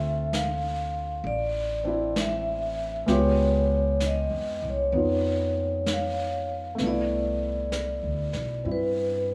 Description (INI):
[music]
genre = jazz ballad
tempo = 65 BPM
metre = 4/4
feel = swing 68% on 8ths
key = C major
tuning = A4 = 443 Hz
[part]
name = vibraphone with medium mallets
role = melody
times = 0.0-9.3 s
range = B4 to F5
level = -30 LUFS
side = equal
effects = none
[part]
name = warm grand piano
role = accompaniment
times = 0.0-9.3 s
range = Ab3 to G4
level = -32 LUFS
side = equal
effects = none
[part]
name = upright bass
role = bass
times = 0.0-9.3 s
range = A1 to G2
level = -33 LUFS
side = equal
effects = none
[part]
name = jazz brush drum kit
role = drums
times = 0.3-9.3 s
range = brushed snare drum, hi-hat, snare drum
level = -38 LUFS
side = equal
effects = none
[sound]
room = light reverb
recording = studio reverb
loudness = -27 LUFS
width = mono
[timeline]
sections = 0.0-6.8 A section; 6.8-9.3 B section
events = none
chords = 0.0 Dm9; 3.1 Db7#11; 6.8 Cmaj13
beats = 0.32 1.23 2.15 | 3.07 3.99 4.92 5.85 | 6.79 7.71 8.64